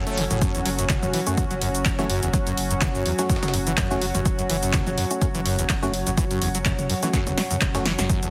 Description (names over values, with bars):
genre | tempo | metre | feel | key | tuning
acid house | 125 BPM | 4/4 | swing 55% on 16ths | F# minor | A4 = 440 Hz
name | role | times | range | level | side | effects
warm analog pad | sustained chords | 0.0-8.3 s | F#3 to A4 | -31 LUFS | equal | chorus, sidechain pumping
acid bass, saw | riff | 0.0-8.3 s | E2 to A3 | -30 LUFS | equal | tube saturation, subtle chorus, sidechain pumping, tape echo
saturated sub bass | bass | 0.0-8.3 s | E1 to F#1 | -34 LUFS | equal | sidechain pumping
warbly tape-like pad | texture | 0.0-8.3 s | F#4 to F#5 | -35 LUFS | equal | chorus, built-in reverb, sidechain pumping
breakbeat sampler-style drum kit | drums | 0.1-8.2 s | hi-hat, snare drum | -39 LUFS | equal | none
punchy analog drum machine | drums | 0.1-8.3 s | cabasa, handclaps, hi-hat, snare drum, toms | -30 LUFS | equal | overdrive
electronic kick drum | drums | 0.4-8.2 s | none | -27 LUFS | equal | overdrive
percussive organ stab | stabs | 1.3-7.8 s | A3 to F#4 | -33 LUFS | equal | analog chorus, tape echo
room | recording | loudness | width
light reverb | heavily compressed radio sound, multiband compression | -23 LUFS | mono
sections
0.0-8.3 A section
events
drum fill 7.1-8.1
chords
0.0 F#m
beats
| 0.42 0.90 1.38 1.86 | 2.34 2.82 3.30 3.78 | 4.26 4.74 5.22 5.70 | 6.18 6.66 7.14 7.62 | 8.10